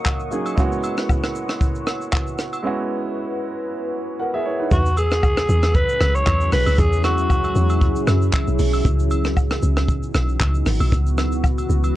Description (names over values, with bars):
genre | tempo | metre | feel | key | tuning
amapiano | 116 BPM | 4/4 | swing 55% on 16ths | unclear | A4 = 440 Hz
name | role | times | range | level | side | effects
warm concert grand piano | accompaniment | 0.0-4.8 s | F#3 to F#5 | -25 LUFS | right 2 dB | none
deep dark ambient pad | sustained chords | 0.0-12.0 s | E3 to E6 | -27 LUFS | equal | chorus, built-in reverb, sidechain pumping
compact cocktail drum kit | drums | 0.1-11.9 s | handclaps, hi-hat, kick drum, rim click, shaker | -21 LUFS | equal | vintage 12-bit sampler grit
agogo bells and woodblock | percussion | 0.1-11.9 s | none | -31 LUFS | equal | none
growling alto saxophone | melody | 4.7-8.0 s | F#4 to C#5 | -22 LUFS | equal | ping-pong delay
deep log drum bass | bass | 4.7-11.9 s | G#1 to F#2 | -19 LUFS | equal | none
room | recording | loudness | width
little or no reverb | worn, warbling old tape, cassette tape, warbly pitch drift | -17 LUFS | side -14 dB against mid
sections
0.0-4.7 A section; 4.7-12.0 B section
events
break 2.6-4.7; drop 4.7-12.0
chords
0.0 D#m7; 0.6 F#7sus4; 4.7 E69; 8.9 C#m11